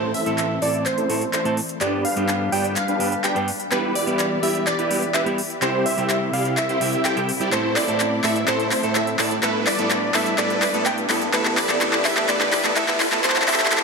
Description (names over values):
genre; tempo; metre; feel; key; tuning
EDM, festival progressive house; 126 BPM; 4/4; straight; A minor; A4 = 440 Hz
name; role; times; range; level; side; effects
plucky unison lead; melody; 0.0-13.8 s; B4 to G5; -25 LUFS; equal; cassette tape, ping-pong delay
clean electric guitar; accompaniment; 0.0-13.8 s; G2 to A4; -26 LUFS; right 2 dB; ping-pong delay
rich chamber string section; sustained chords; 0.0-13.8 s; C3 to B4; -29 LUFS; left 2 dB; vintage 12-bit sampler grit, low-pass filter
supersaw chords; riff; 0.0-13.8 s; D4 to E5; -26 LUFS; right 1 dB; phaser, low-pass filter, ping-pong delay
wide detuned saw bass; bass; 0.0-13.8 s; E1 to A2; -33 LUFS; equal; none
big-room dance drum kit; drums; 0.1-13.8 s; handclaps, hi-hat; -24 LUFS; left 1 dB; none
riser; sound effects; 9.7-13.8 s; none; -34 LUFS; left 1 dB; none
room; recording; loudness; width
moderate huge ambient reverb, RT60 6.7 s; high-pass filter; -18 LUFS; side -4 dB against mid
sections
0.0-13.8 A section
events
build-up 0.0-13.8; drum fill 0.0-13.8; filter sweep on supersaw synth 0.0-13.8; filter sweep on string section 0.0-13.8; filter sweep 0.0-13.8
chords
0.0 Am; 1.8 G; 3.7 Em; 5.6 C; 7.5 Am; 9.4 G; 11.3 Em; 13.2 C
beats
0.38 0.86 1.33 | 1.81 2.29 2.76 3.24 | 3.72 4.19 4.67 5.14 | 5.62 6.10 6.57 7.05 | 7.53 8.00 8.48 8.95 | 9.43 9.91 10.38 10.86 | 11.34 11.81 12.29 12.76 | 13.24 13.72